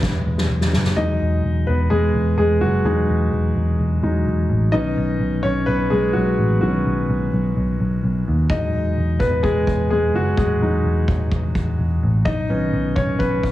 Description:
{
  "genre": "piano-driven pop",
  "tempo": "128 BPM",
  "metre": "4/4",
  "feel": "straight",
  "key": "E major",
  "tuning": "A4 = 440 Hz",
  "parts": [
    { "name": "clear concert grand piano", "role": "accompaniment", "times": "0.0-13.5 s", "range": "D#3 to D#5", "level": "-21 LUFS", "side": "equal", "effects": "none" },
    { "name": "vintage muted picked electric bass", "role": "bass", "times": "0.0-13.5 s", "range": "E1 to D#2", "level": "-20 LUFS", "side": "equal", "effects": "none" },
    { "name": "soft-mallet drum kit", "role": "drums", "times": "0.0-1.0, 8.5-13.5 s", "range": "kick drum, snare drum", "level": "-23 LUFS", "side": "equal", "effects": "none" }
  ],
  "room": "light reverb, studio reverb",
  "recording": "heavily compressed radio sound, small room reverb",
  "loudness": "-17 LUFS",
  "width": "side -14 dB against mid",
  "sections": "1.0-13.5 A section",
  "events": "drum fill 0.0-1.0; grand piano solo 1.0-13.5",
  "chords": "0.0 E; 1.0 Emaj7; 4.7 Badd9; 8.5 Emaj7; 12.3 Badd9",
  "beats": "0.03 0.50 | 0.97 1.44 1.91 2.38 | 2.85 3.32 3.79 4.26 | 4.73 5.20 5.67 6.14 | 6.61 7.08 7.55 8.02 | 8.49 8.96 9.44 9.91 | 10.38 10.85 11.32 11.79 | 12.26 12.73 13.20"
}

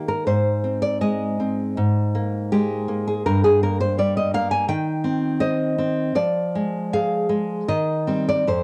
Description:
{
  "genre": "romantic piece for solo classical guitar",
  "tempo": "81 BPM",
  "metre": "2/4",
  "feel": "uneven beats, rubato",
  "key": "C minor from 4.7 s",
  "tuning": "A4 = 440 Hz",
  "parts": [
    { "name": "nylon-string guitar", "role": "solo", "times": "0.0-8.6 s", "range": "F2 to Ab5", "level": "-22 LUFS", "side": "equal", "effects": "cassette tape" }
  ],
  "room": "light reverb, studio reverb",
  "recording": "home recording on cassette",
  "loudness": "-22 LUFS",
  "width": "mono",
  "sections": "0.0-8.6 A section",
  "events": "none",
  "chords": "0.3 Ab; 1.8 Absus2; 3.3 Gmadd11; 4.7 Cm/Eb; 6.2 Ddim/F; 7.7 Cm/Eb",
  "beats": "| 0.28 1.02 | 1.78 2.52 | 3.26 3.98 | 4.68 5.41 | 6.17 6.91 | 7.67 8.48"
}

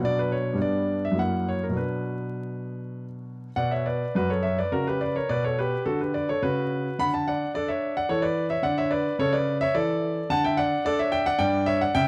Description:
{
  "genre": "classical, baroque-style suite movement for grand piano",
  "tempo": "106 BPM",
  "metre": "3/4",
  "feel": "rubato",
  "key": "B minor",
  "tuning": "A4 = 440 Hz",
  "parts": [
    { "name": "clear concert grand piano", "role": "solo", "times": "0.0-12.1 s", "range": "F#2 to B5", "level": "-26 LUFS", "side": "equal", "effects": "none" }
  ],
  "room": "light reverb",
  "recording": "close, detailed microphones, vinyl crackle",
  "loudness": "-26 LUFS",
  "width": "mono",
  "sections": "0.0-3.6 A section; 3.6-12.1 B section",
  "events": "none",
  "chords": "0.1 Bm; 0.6 G; 1.2 F#7; 1.8 Bm; 4.7 F#/C#; 5.3 Bm; 7.0 D; 8.1 A/E; 8.6 D5; 10.3 D; 11.4 G5",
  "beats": "| 0.05 0.63 1.21 | 1.80 2.39 2.98 | 3.57 4.14 4.72 | 5.28 5.84 6.41 | 6.97 7.53 8.08 | 8.63 9.19 9.74 | 10.30 10.84 11.39 | 11.95"
}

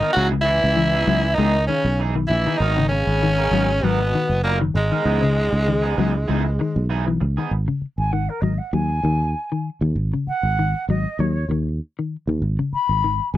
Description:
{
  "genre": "afrobeat",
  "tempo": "98 BPM",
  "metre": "4/4",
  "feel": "swing 54% on 16ths",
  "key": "G# minor",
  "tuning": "A4 = 440 Hz",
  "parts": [
    { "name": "breathy tenor saxophone", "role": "melody", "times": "0.0-6.9 s", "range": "G#3 to F#4", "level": "-22 LUFS", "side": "equal", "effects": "none" },
    { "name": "clear trombone section", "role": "second line", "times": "0.0-6.8 s", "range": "G#2 to F#3", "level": "-29 LUFS", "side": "left 2 dB", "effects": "none" },
    { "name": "raspy alto saxophone", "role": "second line", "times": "0.0-6.9 s", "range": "G#3 to F#4", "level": "-30 LUFS", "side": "right 2 dB", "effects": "none" },
    { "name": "clean electric guitar", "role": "arpeggios", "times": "0.0-13.4 s", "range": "C#3 to G#3", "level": "-24 LUFS", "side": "left 5 dB", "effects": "none" },
    { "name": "electric guitar at the edge of break-up", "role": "stabs", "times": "0.0-7.5 s", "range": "E3 to A#4", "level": "-28 LUFS", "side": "right 6 dB", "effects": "wide subtle chorus" },
    { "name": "fingered electric bass", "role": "bass", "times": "0.2-13.4 s", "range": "F#1 to D#2", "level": "-21 LUFS", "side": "right 1 dB", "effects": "none" },
    { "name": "mellow concert flute", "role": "melody", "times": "8.0-13.4 s", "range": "A#4 to B5", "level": "-24 LUFS", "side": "left 1 dB", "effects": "slapback echo" }
  ],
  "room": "light reverb",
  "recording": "dry, close 1970s-style studio recording",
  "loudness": "-18 LUFS",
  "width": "side -14 dB against mid",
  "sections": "0.0-7.5 A section; 7.5-13.4 B section",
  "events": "flute solo 7.5-13.4",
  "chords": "0.2 C#m9; 2.6 G#m9; 5.1 C#m9; 7.5 G#5; 8.7 D#m; 10.0 G#5; 11.2 D#m; 12.4 G#m",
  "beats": "| 0.16 0.77 1.39 2.00 | 2.61 3.22 3.84 4.45 | 5.06 5.67 6.29 6.90 | 7.51 8.13 8.74 9.36 | 9.97 10.59 11.20 11.82 | 12.43 13.05"
}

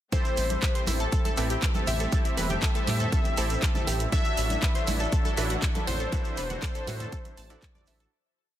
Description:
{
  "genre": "progressive house",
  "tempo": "120 BPM",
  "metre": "4/4",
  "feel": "straight",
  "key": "A dorian",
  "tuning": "A4 = 440 Hz",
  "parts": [
    { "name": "plucky unison lead", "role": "melody", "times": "0.1-8.0 s", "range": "C5 to E5", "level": "-34 LUFS", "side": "left 2 dB", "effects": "sidechain pumping, ping-pong delay" },
    { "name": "warm studio string section", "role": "sustained chords", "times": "0.1-8.1 s", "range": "E3 to D4", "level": "-38 LUFS", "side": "left 2 dB", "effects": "sidechain pumping" },
    { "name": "analog pluck", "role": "arpeggios", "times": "0.1-8.1 s", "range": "E4 to A6", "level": "-36 LUFS", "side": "equal", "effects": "chorus, sidechain pumping, ping-pong delay" },
    { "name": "supersaw stab", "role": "stabs", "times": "0.1-8.1 s", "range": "C4 to E5", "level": "-35 LUFS", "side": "right 2 dB", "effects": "sidechain pumping, ping-pong delay" },
    { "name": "electronic kick drum", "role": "drums", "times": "0.1-7.7 s", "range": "none", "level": "-27 LUFS", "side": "equal", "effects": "studio reverb" },
    { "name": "pop drum kit", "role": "drums", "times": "0.1-8.1 s", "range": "handclaps, hi-hat", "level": "-34 LUFS", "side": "right 2 dB", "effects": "studio reverb" },
    { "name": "congas and bongos", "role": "percussion", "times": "0.1-8.1 s", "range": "none", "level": "-38 LUFS", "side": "right 4 dB", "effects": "sidechain pumping on perc" },
    { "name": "shekere", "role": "percussion", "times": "0.1-8.1 s", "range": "none", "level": "-41 LUFS", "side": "right 4 dB", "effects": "none" },
    { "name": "dark detuned saw bass", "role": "bass", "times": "0.4-8.1 s", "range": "E1 to A2", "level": "-30 LUFS", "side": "equal", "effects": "sidechain pumping" }
  ],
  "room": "little or no reverb",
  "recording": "dense, heavily limited modern master",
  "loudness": "-24 LUFS",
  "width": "side -12 dB against mid",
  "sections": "0.1-8.1 drop",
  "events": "drop 0.1-8.1; fade-out 5.5-8.1",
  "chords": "0.1 Am7; 4.1 Dadd9/A",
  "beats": "| 0.12 0.62 1.12 1.62 | 2.12 2.62 3.12 3.62 | 4.12 4.62 5.12 5.62 | 6.12 6.62 7.12 7.62"
}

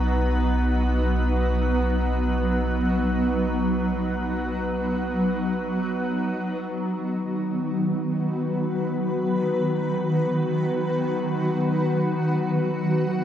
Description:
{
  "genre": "ambient",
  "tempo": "free time",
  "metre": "none",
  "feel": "none",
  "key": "B major",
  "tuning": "A4 = 442 Hz",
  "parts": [
    { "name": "granular cloud pad", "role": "sustained chords", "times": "0.0-13.2 s", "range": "C#3 to A#5", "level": "-23 LUFS", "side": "equal", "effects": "built-in reverb, shimmer reverb" },
    { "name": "deep rumbling drone", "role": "bass", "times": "0.0-6.6 s", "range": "B1", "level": "-26 LUFS", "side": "equal", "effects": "built-in reverb" },
    { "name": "organ-like drone", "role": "drone", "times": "0.0-13.2 s", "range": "B3 to B4", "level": "-31 LUFS", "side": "right 2 dB", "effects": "ensemble chorus, built-in reverb" }
  ],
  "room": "wet lush hall reverb, RT60 2.7 s",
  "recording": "dark, warm production",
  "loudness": "-22 LUFS",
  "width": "side -10 dB against mid",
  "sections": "0.0-6.6 A section; 6.6-13.2 B section",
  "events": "none",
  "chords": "0.0 Bmaj7; 6.6 B",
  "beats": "free time"
}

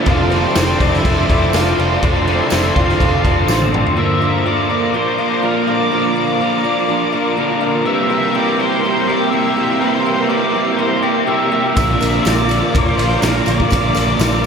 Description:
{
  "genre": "rock, shoegaze and dream pop",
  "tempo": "123 BPM",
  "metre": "4/4",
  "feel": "straight",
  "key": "unclear",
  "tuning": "A4 = 440 Hz",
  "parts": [
    { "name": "octave-fuzz lead guitar", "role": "melody", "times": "0.0-14.5 s", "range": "D4 to E5", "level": "-21 LUFS", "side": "equal", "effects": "distortion, analog delay" },
    { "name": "lush unison pad", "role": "sustained chords", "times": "0.0-14.5 s", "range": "F4 to D6", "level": "-23 LUFS", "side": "left 1 dB", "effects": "chorus" },
    { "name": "fingerpicked twelve-string acoustic guitar", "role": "arpeggios", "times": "0.0-14.5 s", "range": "E3 to A4", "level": "-24 LUFS", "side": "left 5 dB", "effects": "ensemble chorus, analog delay" },
    { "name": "crunchy overdriven guitar", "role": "riff", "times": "0.0-14.5 s", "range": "F2 to Bb4", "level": "-21 LUFS", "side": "left 8 dB", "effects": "analog chorus" },
    { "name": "electric guitar through a small old amp", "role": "riff", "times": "0.0-14.5 s", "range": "Bb2 to C5", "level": "-19 LUFS", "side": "right 6 dB", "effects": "reverse reverb" },
    { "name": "vintage muted picked electric bass", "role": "bass", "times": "0.1-3.8, 11.8-14.5 s", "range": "F1 to Bb1", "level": "-20 LUFS", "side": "equal", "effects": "none" },
    { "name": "raw garage drum kit", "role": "drums", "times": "0.1-4.0, 11.8-14.3 s", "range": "crash cymbal, kick drum, ride cymbal, snare drum, toms", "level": "-18 LUFS", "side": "equal", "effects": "none" },
    { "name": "tambourine", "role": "percussion", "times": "0.6-3.6, 11.8-14.5 s", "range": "none", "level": "-32 LUFS", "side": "right 12 dB", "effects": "none" }
  ],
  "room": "wet lush hall reverb, RT60 2.3 s",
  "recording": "dreamy mix soaked in reverb",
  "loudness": "-13 LUFS",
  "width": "side -6 dB against mid",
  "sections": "0.0-4.0 A section; 4.0-14.5 B section",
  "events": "drum fill 3.5-4.0",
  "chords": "0.1 F6; 4.0 Bb; 7.9 C7; 11.8 Bb",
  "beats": "| 0.07 0.56 1.04 1.53 | 2.02 2.51 3.00 3.48 | 3.97 4.46 4.95 5.43 | 5.92 6.41 6.89 7.38 | 7.87 8.36 8.84 9.33 | 9.82 10.30 10.79 11.28 | 11.77 12.26 12.74 13.23 | 13.72 14.20"
}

